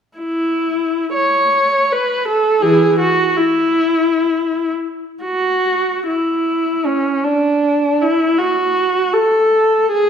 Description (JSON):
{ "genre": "classical, free, expressive piece for unaccompanied viola", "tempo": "49-85 BPM", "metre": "3/4", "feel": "rubato", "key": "unclear", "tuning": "A4 = 440 Hz", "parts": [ { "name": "warm viola", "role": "solo", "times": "0.2-10.1 s", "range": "E3 to C#5", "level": "-14 LUFS", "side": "equal", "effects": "none" } ], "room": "moderate recital hall reverb, RT60 1.5 s", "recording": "minimal, uncompressed stereo recording", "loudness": "-14 LUFS", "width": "side -7 dB against mid", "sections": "0.2-5.2 A section; 5.2-10.1 B section", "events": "none", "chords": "none", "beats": "| 0.19 1.14 1.91 | 2.64 3.37 4.19 | 5.23 6.06 6.86 | 7.62 8.37 9.14 | 9.92" }